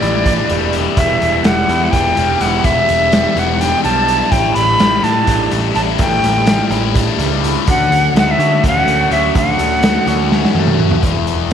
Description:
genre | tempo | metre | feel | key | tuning
psychedelic rock | 250 BPM (eighths) | 7/8 | straight | unclear | A4 = 445 Hz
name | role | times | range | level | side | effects
bright reedy jazz flute | melody | 0.0-10.5 s | D5 to B5 | -16 LUFS | equal | slapback echo
tonewheel organ | sustained chords | 0.0-11.0 s | F#3 to G4 | -23 LUFS | right 12 dB | slow rotary speaker, chorus vibrato
thick fuzz guitar | riff | 0.0-11.5 s | E2 to F#4 | -18 LUFS | left 11 dB | distortion, phaser
fuzz picked electric bass | bass | 0.0-11.5 s | E1 to D3 | -19 LUFS | right 1 dB | overdrive
raw garage drum kit | drums | 0.0-11.5 s | hi-hat, kick drum, snare drum, toms | -18 LUFS | right 1 dB | none
room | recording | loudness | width
moderate echo chamber reverb, RT60 1.7 s, small room ambience | 1960s-style stereo with parts hard left and right | -11 LUFS | side -8 dB against mid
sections
0.0-11.0 A section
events
drum fill 10.3-11.0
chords
0.0 A7sus4; 1.0 Em7; 4.3 A7sus4; 7.7 Dmaj7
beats
0.02 0.26 0.50 0.74 | 0.97 1.21 1.45 1.69 1.93 2.17 2.41 | 2.65 2.89 3.12 3.36 3.60 3.84 4.08 | 4.32 4.56 4.80 5.04 5.28 5.52 5.76 | 6.00 6.24 6.48 6.72 6.96 7.20 7.44 | 7.68 7.92 8.16 8.40 8.64 8.88 9.12 | 9.36 9.60 9.84 10.08 10.32 10.56 10.80 | 11.04 11.28 11.52

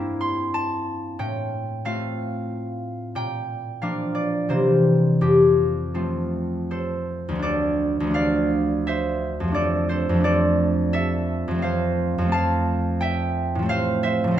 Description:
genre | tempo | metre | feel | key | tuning
classical, solo harp piece | 77-93 BPM | 3/4 | rubato | F major, D minor from 7.4 s | A4 = 440 Hz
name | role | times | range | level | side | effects
concert harp | solo | 0.0-14.4 s | D2 to C6 | -20 LUFS | equal | none
room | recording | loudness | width
moderate recital hall reverb, RT60 1.8 s | close, detailed microphones | -20 LUFS | side -11 dB against mid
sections
0.0-7.4 A section; 7.4-14.4 B section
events
none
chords
0.0 C7/G; 1.2 F/A; 3.2 Bb; 4.5 C7; 5.2 F; 7.4 Dm; 9.5 Dm/F; 11.6 F; 13.7 F/A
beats
0.54 | 1.19 1.85 2.51 | 3.15 3.81 4.50 | 5.22 5.94 6.70 | 7.43 8.14 8.85 | 9.55 10.23 10.93 | 11.63 12.31 13.00 | 13.69 14.37

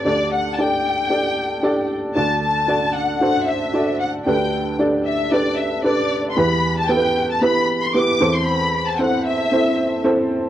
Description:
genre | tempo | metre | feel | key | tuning
pop | 114 BPM | 4/4 | swing 56% on 16ths | unclear | A4 = 441 Hz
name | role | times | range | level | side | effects
rich studio violin section | melody | 0.0-10.0 s | D5 to D6 | -21 LUFS | left 3 dB | cassette tape
dark upright piano | accompaniment | 0.0-10.5 s | D2 to D5 | -19 LUFS | right 1 dB | cassette tape
room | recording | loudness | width
moderate studio ambience, RT60 0.5 s | home recording on cassette, lossy compression artefacts | -17 LUFS | side -11 dB against mid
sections
0.0-2.2 A section; 2.2-10.5 B section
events
none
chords
0.1 Dsus4; 2.2 D; 4.3 Gadd9/D; 6.4 Em; 8.2 Am/E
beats
| 0.06 0.58 1.11 1.64 | 2.16 2.69 3.21 3.74 | 4.27 4.79 5.32 5.85 | 6.37 6.90 7.42 7.95 | 8.47 9.00 9.53 10.05

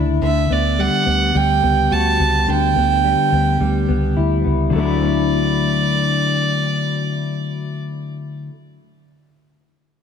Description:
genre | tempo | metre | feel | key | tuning
dream pop | 106 BPM | 4/4 | straight | D major | A4 = 439 Hz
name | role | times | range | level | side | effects
mellow electric guitar | arpeggios | 0.0-8.5 s | D3 to F#4 | -19 LUFS | left 4 dB | analog chorus, digital delay
vintage muted fingered electric bass | bass | 0.0-8.5 s | C#2 to D2 | -20 LUFS | right 1 dB | none
warm violin | melody | 0.2-7.8 s | D5 to A5 | -20 LUFS | right 5 dB | digital delay
room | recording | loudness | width
moderate plate reverb, RT60 2.7 s | none | -15 LUFS | side -7 dB against mid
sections
0.0-4.7 A section; 4.7-7.0 B section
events
none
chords
0.2 Gmaj7/D; 2.5 Em7/D; 4.7 Dadd9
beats
| 0.21 0.78 1.34 1.91 | 2.47 3.04 3.61 4.17 | 4.74 5.30 5.87 6.44

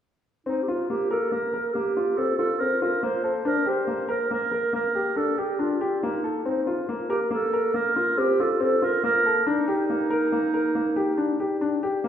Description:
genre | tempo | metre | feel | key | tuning
contemporary instrumental, contemporary | 140 BPM | 7/4 | straight | unclear | A4 = 442 Hz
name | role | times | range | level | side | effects
dark clarinet | melody | 0.5-12.0 s | Eb4 to C5 | -25 LUFS | right 3 dB | none
clear baby grand piano | arpeggios | 0.5-12.1 s | Bb3 to Bb4 | -25 LUFS | left 3 dB | none
room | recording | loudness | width
wet recital hall reverb, RT60 1.9 s | heard from further back in the room | -22 LUFS | side -9 dB against mid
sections
0.5-12.1 A section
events
none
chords
0.5 Fsus4; 3.5 Bb6; 6.5 Fsus4; 9.5 Ebmaj7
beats
| 0.46 0.89 1.31 1.74 2.17 2.60 3.03 | 3.46 3.88 4.31 4.74 5.17 5.60 6.03 | 6.46 6.89 7.32 7.75 8.18 8.61 9.04 | 9.46 9.89 10.32 10.75 11.18 11.61 12.04

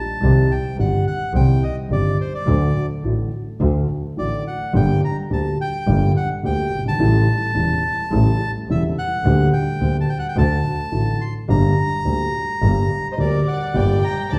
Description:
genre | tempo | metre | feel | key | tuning
tango | 106 BPM | 4/4 | rubato | G harmonic minor | A4 = 440 Hz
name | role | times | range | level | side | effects
bandoneon | melody | 0.0-14.4 s | C5 to C6 | -28 LUFS | equal | none
dark grand piano | accompaniment | 0.2-14.4 s | E1 to G4 | -22 LUFS | equal | none
clear double bass | bass | 0.2-14.4 s | E1 to D2 | -24 LUFS | equal | none
warm chamber violin section | second line | 13.1-14.4 s | Bb4 to G5 | -32 LUFS | equal | none
room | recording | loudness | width
wet recital hall reverb, RT60 1.4 s | heard from further back in the room | -19 LUFS | mono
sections
0.0-14.4 A section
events
none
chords
0.2 Cm; 2.5 D; 4.7 Gm; 7.0 A7; 9.2 Gm/D; 10.4 D; 11.5 Gm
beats
| 0.22 0.78 1.34 1.91 | 2.47 3.03 3.60 4.17 | 4.74 5.30 5.87 6.43 | 6.99 7.56 8.12 8.68 | 9.24 9.80 10.36 10.92 | 11.48 12.05 12.61 13.18 | 13.74 14.31

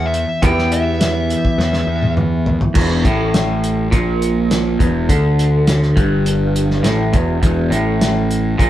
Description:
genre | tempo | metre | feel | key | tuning
psychedelic rock | 103 BPM | 4/4 | straight | E minor | A4 = 440 Hz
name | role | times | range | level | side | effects
fuzz lead guitar | melody | 0.0-2.1 s | E5 to G5 | -21 LUFS | equal | distortion
twangy electric guitar | riff | 0.0-8.7 s | E2 to G4 | -18 LUFS | equal | phaser
fuzz picked electric bass | bass | 0.0-8.7 s | E1 to E2 | -18 LUFS | equal | overdrive
cloth-damped thuddy drum kit | drums | 0.1-8.7 s | crash cymbal, hi-hat, kick drum, snare drum, toms | -18 LUFS | equal | none
room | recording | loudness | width
moderate studio reverb, RT60 0.6 s | band playing live in one room | -14 LUFS | side -13 dB against mid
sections
0.0-2.8 A section; 2.8-8.7 B section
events
lead electric guitar solo 0.0-2.8; drum fill 1.6-2.8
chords
0.0 Em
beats
| 0.43 1.01 1.59 2.18 | 2.76 3.34 3.93 4.51 | 5.09 5.67 6.26 6.84 | 7.42 8.01 8.59

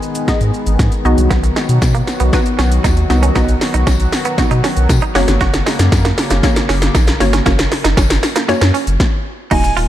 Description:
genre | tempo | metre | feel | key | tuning
dance-pop | 117 BPM | 4/4 | straight | unclear | A4 = 440 Hz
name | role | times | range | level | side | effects
hollow square pluck | accompaniment | 0.0-9.9 s | Bb3 to Eb5 | -20 LUFS | equal | chorus, sidechain pumping, low-pass filter
chorused pulse-width pad | sustained chords | 0.0-9.9 s | Db3 to Ab4 | -22 LUFS | left 2 dB | sidechain pumping, low-pass filter
punchy analog drum machine | drums | 0.0-9.9 s | crash cymbal, hi-hat, kick drum, shaker, snare drum | -16 LUFS | equal | overdrive
warm sub bass | bass | 0.3-9.9 s | Eb1 to B2 | -15 LUFS | equal | sidechain pumping
direct-recorded clean electric guitar | riff | 1.3-9.9 s | Ab3 to Gb4 | -22 LUFS | right 8 dB | lush chorus, low-pass filter
tambourine | percussion | 1.6-9.9 s | none | -33 LUFS | left 12 dB | none
silver concert flute | melody | 9.5-9.7 s | Ab5 | -18 LUFS | right 3 dB | sidechain pumping
room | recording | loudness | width
light reverb, digital ambience | dark, warm production | -12 LUFS | side -12 dB against mid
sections
0.0-9.5 A section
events
build-up 0.0-9.5; drum fill 0.0-9.0; filter sweep 0.0-9.5; stop 9.0-9.5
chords
0.0 Abm; 1.1 B; 5.2 Gb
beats
0.28 0.79 | 1.31 1.82 2.33 2.84 | 3.36 3.87 4.38 4.90 | 5.41 5.92 6.43 6.95 | 7.46 7.97 8.48 9.00 | 9.51

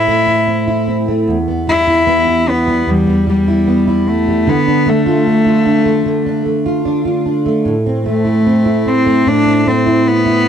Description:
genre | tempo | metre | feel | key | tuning
acoustic pop | 75 BPM | 4/4 | straight | A minor | A4 = 440 Hz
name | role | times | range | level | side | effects
clear cello | melody | 0.0-10.5 s | G3 to E4 | -13 LUFS | left 2 dB | none
fingerpicked plugged-in steel-string acoustic guitar | accompaniment | 0.0-10.5 s | E2 to F4 | -14 LUFS | right 1 dB | double-tracked left and right
room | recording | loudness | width
studio reverb | dry, close 1970s-style studio recording | -11 LUFS | side -8 dB against mid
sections
0.0-10.5 A section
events
none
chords
0.0 Am; 1.3 Em; 4.5 Dm; 7.7 Am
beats
0.47 | 1.27 2.07 2.87 3.67 | 4.47 5.26 6.06 6.86 | 7.66 8.46 9.26 10.06

